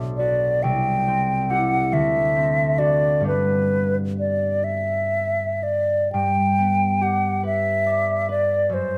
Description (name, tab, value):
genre	classical, romantic duo for flute and harp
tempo	38-48 BPM (dotted quarters)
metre	6/8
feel	rubato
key	G major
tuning	A4 = 441 Hz
part	concert harp	accompaniment	0.0-9.0 s	B1 to D5	-26 LUFS	equal	none
part	hollow concert flute	melody	0.2-9.0 s	B4 to G5	-23 LUFS	equal	none
room	moderate recital hall reverb, RT60 1.4 s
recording	close, detailed microphones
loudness	-21 LUFS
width	mono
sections	0.0-6.1 A section; 6.1-9.0 A section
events	none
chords	0.0 Bm; 0.6 C; 1.9 D7; 3.3 G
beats	| 0.64 1.92 | 3.26 4.66 | 6.14 7.44 | 8.71